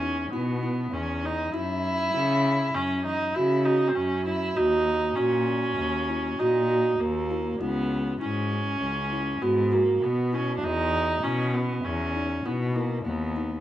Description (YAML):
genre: contemporary instrumental, chamber music in an uneven meter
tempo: 99 BPM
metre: 5/4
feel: straight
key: unclear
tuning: A4 = 441 Hz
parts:
  - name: rich viola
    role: second line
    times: 0.0-13.6 s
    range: A#3 to E4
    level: -28 LUFS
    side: right 1 dB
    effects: none
  - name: kalimba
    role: arpeggios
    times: 0.0-13.6 s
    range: E3 to F#4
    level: -28 LUFS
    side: right 2 dB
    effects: none
  - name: warm cello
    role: bass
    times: 0.0-13.6 s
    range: C#2 to C#3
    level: -29 LUFS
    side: left 2 dB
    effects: none
room: moderate recital hall reverb, RT60 1.4 s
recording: none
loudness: -23 LUFS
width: side -13 dB against mid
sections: 0.0-13.6 A section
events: none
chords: 0.0 E5; 1.5 F#5; 4.6 D#m7; 7.6 C#m7; 10.6 E5